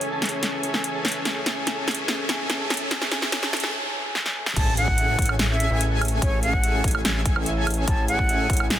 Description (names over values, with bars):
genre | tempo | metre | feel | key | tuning
future bass | 145 BPM | 4/4 | half-time | A major | A4 = 440 Hz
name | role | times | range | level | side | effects
clear grand piano | accompaniment | 0.0-4.4 s | none | barely audible | none | none
rich chamber string section | sustained chords | 0.0-4.6 s | E3 to C#5 | -37 LUFS | left 3 dB | sidechain pumping, low-pass filter
concert harp | arpeggios | 0.0-8.8 s | G#4 to A5 | -35 LUFS | right 2 dB | sidechain pumping, low-pass filter, digital delay
dense compressed supersaw | riff | 0.0-8.8 s | C#4 to G#5 | -30 LUFS | equal | sidechain pumping, low-pass filter, digital delay
big-room dance drum kit | drums | 0.0-8.8 s | crash cymbal, hi-hat, snare drum, woodblock | -26 LUFS | equal | none
riser and impact | sound effects | 0.2-6.2 s | none | -33 LUFS | equal | none
breathy concert flute | melody | 4.6-8.7 s | C#5 to A5 | -26 LUFS | equal | sidechain pumping, tape echo
airy dreamy lead | arpeggios | 4.6-8.8 s | G#5 | -34 LUFS | equal | chorus, sidechain pumping, digital delay
fat analog bass | bass | 4.6-8.8 s | A1 | -25 LUFS | equal | sidechain pumping
electronic kick drum | drums | 4.6-8.6 s | none | -24 LUFS | equal | none
room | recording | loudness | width
light reverb, small room reverb | dense, heavily limited modern master, high-pass filter | -21 LUFS | side -12 dB against mid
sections
0.0-4.6 A section; 4.6-8.8 B section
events
build-up 0.0-4.6; drum fill 0.0-3.7, 4.2-4.6; break 3.7-4.6; drop 4.6-8.8; impact 4.6-6.2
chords
0.0 Amaj7